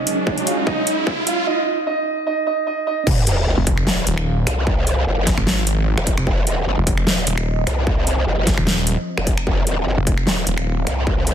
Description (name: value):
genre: heavy wobble dubstep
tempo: 150 BPM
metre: 4/4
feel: swing 54% on 16ths, half-time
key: F phrygian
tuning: A4 = 441 Hz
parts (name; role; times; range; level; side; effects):
- dark baby grand piano; melody; 0.0-3.1 s; Eb4 to F5; -22 LUFS; right 3 dB; digital delay
- supersaw pad; sustained chords; 0.0-11.3 s; F3 to F5; -29 LUFS; right 1 dB; sidechain pumping, low-pass filter
- riser and sub drop; sound effects; 0.0-4.7 s; none; -23 LUFS; right 2 dB; none
- dubstep drum kit; drums; 0.1-11.3 s; crash cymbal, finger snaps, hi-hat, snare drum; -22 LUFS; equal; high-pass filter on hats, small room reverb, high-pass filter on cymbals, high-pass filter on snare
- electronic kick drum; drums; 0.3-11.2 s; none; -21 LUFS; equal; distortion, small room reverb
- growl bass; bass; 3.1-11.3 s; Eb1 to C2; -20 LUFS; equal; chorus, overdrive
- snarling distorted saw bass; bass; 3.6-10.9 s; Eb1 to Ab1; -19 LUFS; equal; distortion, overdrive
room: light reverb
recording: dense, heavily limited modern master, high-pass filter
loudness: -17 LUFS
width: side -9 dB against mid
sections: 0.0-3.1 A section; 3.1-11.3 B section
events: build-up 0.0-3.1; drum fill 0.0-1.5; riser 0.0-1.5; filter sweep 0.0-3.1; drop 3.1-11.3; impact 3.1-4.7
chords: 0.0 Ab7sus4; 1.5 N.C.; 3.1 F5